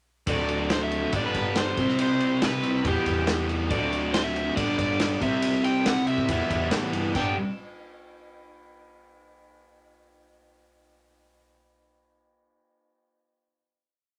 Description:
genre	indie rock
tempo	140 BPM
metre	4/4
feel	straight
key	G major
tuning	A4 = 439 Hz
part	crunchy overdriven guitar	melody	0.3-7.4 s	G4 to G5	-32 LUFS	equal	none
part	crunchy overdriven guitar	riff	0.3-7.3 s	G2 to G4	-35 LUFS	equal	none
part	thick fuzz guitar	riff	0.3-7.3 s	G2 to G4	-29 LUFS	equal	distortion
part	growling picked electric bass	bass	0.3-7.4 s	G1 to A2	-36 LUFS	equal	overdrive
part	loose indie drum kit	drums	0.3-7.3 s	crash cymbal, kick drum, ride cymbal, snare drum	-32 LUFS	equal	none
room	light reverb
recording	faint mains hum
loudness	-25 LUFS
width	mono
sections	0.3-7.2 pre-chorus; 7.2-8.9 final chord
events	none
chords	0.3 D7; 1.1 G; 1.8 Cmaj7; 2.9 Em; 3.7 D7; 4.6 G; 5.2 C; 6.3 Em; 7.2 G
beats	| 0.27 0.70 1.13 1.56 | 1.99 2.42 2.85 3.28 | 3.71 4.14 4.58 5.00 | 5.43 5.87 6.29 6.72 | 7.15

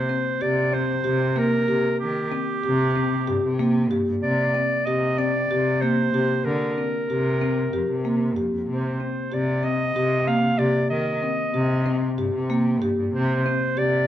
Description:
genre	contemporary instrumental, contemporary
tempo	189 BPM (eighths)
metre	7/8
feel	straight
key	C minor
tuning	A4 = 440 Hz
part	bright clarinet	melody	0.0-14.1 s	G4 to F5	-25 LUFS	right 1 dB	none
part	clear cello	bass	0.0-14.1 s	F2 to Eb3	-26 LUFS	equal	none
part	marimba with soft mallets	arpeggios	0.1-13.9 s	Bb3 to G4	-24 LUFS	left 1 dB	none
room	wet studio reverb, RT60 0.8 s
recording	heard from further back in the room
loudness	-20 LUFS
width	side -11 dB against mid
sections	0.0-14.1 A section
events	none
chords	0.0 C5; 4.2 Bbadd9/C; 8.7 Cm; 13.1 N.C.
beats	0.09 0.41 0.73 1.05 1.37 1.69 | 2.01 2.33 2.64 2.96 3.28 3.60 3.92 | 4.24 4.55 4.87 5.19 5.51 5.83 6.14 | 6.46 6.78 7.10 7.42 7.74 8.05 8.37 | 8.69 9.01 9.32 9.64 9.96 10.28 10.60 | 10.91 11.23 11.55 11.87 12.19 12.50 12.82 | 13.14 13.46 13.78

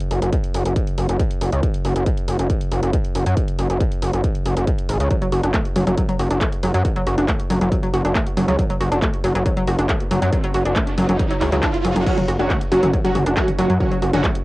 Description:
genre	driving peak-time techno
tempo	138 BPM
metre	4/4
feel	straight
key	F# minor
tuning	A4 = 440 Hz
part	punchy analog drum machine	drums	0.0-14.4 s	crash cymbal, handclaps, hi-hat, toms	-28 LUFS	equal	sidechain pumping on hats, cassette tape, sidechain pumping on cymbals, sidechain pumping on toms
part	gritty driven synth bass	bass	0.1-14.2 s	F#1 to F#2	-19 LUFS	equal	tube saturation, sidechain pumping
part	electronic kick drum	drums	0.3-14.3 s	none	-22 LUFS	equal	distortion, cassette tape
part	analog pluck	riff	5.1-14.3 s	F#3 to F#4	-22 LUFS	equal	chorus, tube saturation, sidechain pumping, cassette tape, analog delay
part	riser	sound effects	10.0-12.1 s	none	-28 LUFS	right 2 dB	none
part	rave stab	stabs	12.1-14.3 s	F#3 to F#4	-21 LUFS	right 1 dB	chorus, built-in reverb, sidechain pumping, cassette tape, analog delay
room	little or no reverb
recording	home recording on cassette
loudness	-17 LUFS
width	side -20 dB against mid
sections	0.0-12.1 A section; 12.1-14.4 B section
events	riser 10.0-12.1; drop 12.1-14.4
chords	0.0 F#5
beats	0.33 0.76 1.20 | 1.63 2.06 2.50 2.94 | 3.37 3.80 4.24 4.67 | 5.11 5.54 5.98 6.41 | 6.85 7.28 7.72 8.15 | 8.59 9.02 9.46 9.89 | 10.33 10.76 11.20 11.63 | 12.06 12.50 12.94 13.37 | 13.80 14.24

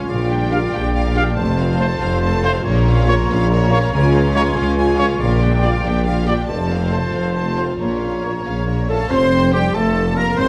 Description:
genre	cinematic, heroic adventure film score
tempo	93 BPM (dotted quarters)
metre	6/8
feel	straight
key	unclear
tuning	A4 = 444 Hz
part	warm symphonic violin section	melody	0.0-10.5 s	Db5 to C6	-33 LUFS	equal	none
part	large flute ensemble	second line	0.0-10.5 s	G5 to C6	-32 LUFS	equal	none
part	warm clarinet	second line	0.0-10.5 s	F4 to C5	-28 LUFS	equal	none
part	warm oboe	second line	0.0-10.5 s	G4 to D5	-30 LUFS	equal	none
part	warm studio violin section	second line	0.0-10.5 s	F4 to C6	-35 LUFS	equal	none
part	rich symphonic viola section	accompaniment	0.0-10.5 s	A3 to C5	-30 LUFS	equal	none
part	concert harp	arpeggios	0.0-10.5 s	F2 to D6	-31 LUFS	equal	none
part	dark symphonic cello section	bass	0.1-10.5 s	F2 to Db3	-25 LUFS	equal	none
part	warm studio double bass section	bass	0.1-10.5 s	F1 to Db2	-23 LUFS	equal	none
part	warm tuba	bass	0.1-10.5 s	F1 to Db2	-26 LUFS	equal	none
part	mellow French horn section	sustained chords	0.5-10.5 s	G3 to G4	-26 LUFS	equal	none
part	mellow trumpet	stabs	0.5-10.5 s	G4 to F5	-28 LUFS	equal	none
room	moderate recital hall reverb, RT60 1.7 s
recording	faint mains hum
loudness	-17 LUFS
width	mono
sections	0.0-9.1 A section; 9.1-10.5 B section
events	build-up 0.0-9.1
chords	0.1 Bb6; 1.4 F; 2.7 Bbm; 3.9 Db; 5.2 Bb6; 6.5 F; 7.8 Bbm; 9.1 F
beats	| 0.09 0.73 | 1.37 2.01 | 2.65 3.29 | 3.93 4.57 | 5.21 5.85 | 6.49 7.14 | 7.79 8.45 | 9.10 9.75 | 10.39

